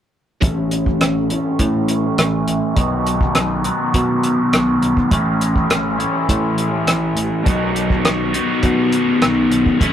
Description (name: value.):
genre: psychedelic rock.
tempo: 102 BPM.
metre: 4/4.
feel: straight.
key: A lydian.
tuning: A4 = 439 Hz.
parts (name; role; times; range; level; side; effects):
cranked stack guitar; riff; 0.4-9.9 s; A2 to A4; -17 LUFS; left 1 dB; overdrive, phaser, low-pass filter.
picked electric bass; bass; 0.4-9.9 s; A1 to B2; -23 LUFS; right 1 dB; none.
cloth-damped thuddy drum kit; drums; 0.4-9.9 s; hi-hat, kick drum, rim click; -18 LUFS; equal; none.
room: moderate small room reverb, RT60 0.5 s.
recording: rough rehearsal-room recording, warm saturation.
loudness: -15 LUFS.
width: side -10 dB against mid.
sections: 0.4-9.9 A section.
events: filter sweep on overdriven electric guitar 0.4-9.9.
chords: 0.4 A; 2.8 B; 5.1 A; 7.5 B.